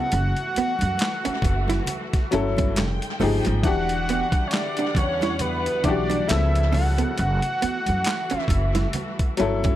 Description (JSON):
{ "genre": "R&B, neo-soul", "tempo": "68 BPM", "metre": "4/4", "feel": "swing 56% on 16ths", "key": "unclear", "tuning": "A4 = 443 Hz", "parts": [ { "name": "fat analog lead", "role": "melody", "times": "0.0-9.3 s", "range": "B4 to F#5", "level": "-26 LUFS", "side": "right 1 dB", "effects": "tape echo" }, { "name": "archtop guitar, miked and amplified", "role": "second line", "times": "0.0-9.8 s", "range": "Ab3 to E4", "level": "-28 LUFS", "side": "right 7 dB", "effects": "none" }, { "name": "warm upright piano", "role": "accompaniment", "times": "0.0-9.8 s", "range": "C#3 to A4", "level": "-26 LUFS", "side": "left 5 dB", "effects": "none" }, { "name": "warm studio string section", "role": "sustained chords", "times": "0.0-9.8 s", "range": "D3 to G5", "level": "-33 LUFS", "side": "left 1 dB", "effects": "none" }, { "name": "upright bass", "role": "bass", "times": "0.1-9.8 s", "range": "E1 to F#2", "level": "-24 LUFS", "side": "equal", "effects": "none" }, { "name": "boom bap sampler-style drum kit", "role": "drums", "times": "0.1-9.8 s", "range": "handclaps, hi-hat, kick drum, snare drum", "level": "-26 LUFS", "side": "equal", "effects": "tape echo" }, { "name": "congas", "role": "percussion", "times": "0.1-9.8 s", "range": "none", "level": "-34 LUFS", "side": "right 3 dB", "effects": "none" } ], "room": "studio ambience", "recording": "echo-heavy mix", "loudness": "-20 LUFS", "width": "side -13 dB against mid", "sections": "0.0-9.8 A section", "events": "none", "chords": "0.1 F#m7; 2.8 Fm9; 3.6 Em9; 6.3 C#7alt; 7.2 F#m7" }